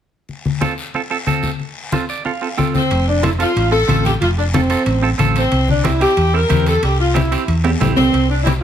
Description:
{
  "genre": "latin, cumbia",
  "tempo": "184 BPM",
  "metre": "4/4",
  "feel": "straight",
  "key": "F major",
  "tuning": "A4 = 439 Hz",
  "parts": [
    { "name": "congas", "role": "percussion", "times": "0.3-8.6 s", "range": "none", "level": "-20 LUFS", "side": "left 5 dB", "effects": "none" },
    { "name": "guiro", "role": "percussion", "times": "0.3-8.6 s", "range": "none", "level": "-30 LUFS", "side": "left 5 dB", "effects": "none" },
    { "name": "clean electric guitar", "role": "accompaniment", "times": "0.6-8.5 s", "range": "C4 to G5", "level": "-22 LUFS", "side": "right 6 dB", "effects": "none" },
    { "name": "mellow saxophone section", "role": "melody", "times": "2.7-8.6 s", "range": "C4 to Bb4", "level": "-17 LUFS", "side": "equal", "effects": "plate reverb" },
    { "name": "hollow-body short-scale fingered electric bass", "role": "bass", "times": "2.9-8.6 s", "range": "F1 to E2", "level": "-17 LUFS", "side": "equal", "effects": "none" },
    { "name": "timbales", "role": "percussion", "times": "2.9-8.6 s", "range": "none", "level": "-27 LUFS", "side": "right 4 dB", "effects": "none" }
  ],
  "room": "light reverb",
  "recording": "none",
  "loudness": "-14 LUFS",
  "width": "side -9 dB against mid",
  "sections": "0.3-2.9 A section; 2.9-8.6 B section",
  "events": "clean electric guitar fill 1.9-2.9; drum fill 7.6-8.1",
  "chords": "0.3 F; 5.5 C"
}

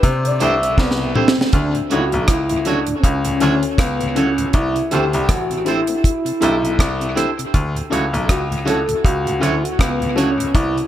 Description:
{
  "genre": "lovers rock reggae",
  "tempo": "80 BPM",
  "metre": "4/4",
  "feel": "swing 58% on 16ths",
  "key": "D major",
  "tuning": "A4 = 440 Hz",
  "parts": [
    { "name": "reedy FM lead", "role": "melody", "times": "0.0-10.9 s", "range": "B3 to E5", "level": "-21 LUFS", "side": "equal", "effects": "chorus, tremolo, tape echo" },
    { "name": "bright grand piano", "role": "bass", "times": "0.0-10.7 s", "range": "A1 to C3", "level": "-21 LUFS", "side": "left 1 dB", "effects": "none" },
    { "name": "deep reggae drum kit", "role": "drums", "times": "0.0-10.9 s", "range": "hi-hat, kick drum, rim click, snare drum, toms", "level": "-19 LUFS", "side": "equal", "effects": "gated reverb, dub echo" },
    { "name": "mellow tonewheel organ", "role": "accompaniment", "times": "0.2-10.8 s", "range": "D2 to C#4", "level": "-27 LUFS", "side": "left 2 dB", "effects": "slow rotary speaker" },
    { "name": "twangy electric guitar", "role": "stabs", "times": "0.2-10.4 s", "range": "A3 to C#5", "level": "-26 LUFS", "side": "right 6 dB", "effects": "dub echo" },
    { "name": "tine electric piano", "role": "accompaniment", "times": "0.4-10.3 s", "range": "C#4 to A4", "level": "-26 LUFS", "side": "left 1 dB", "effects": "medium stereo tremolo, dub echo" }
  ],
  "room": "light reverb",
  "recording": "none",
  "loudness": "-15 LUFS",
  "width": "side -12 dB against mid",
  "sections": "0.0-1.5 A section; 1.5-10.9 B section",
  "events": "soft synth lead solo 0.0-1.5; drum fill 0.8-1.5",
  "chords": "0.0 C6; 1.5 Dmaj7; 4.5 C6; 7.5 Dmaj7"
}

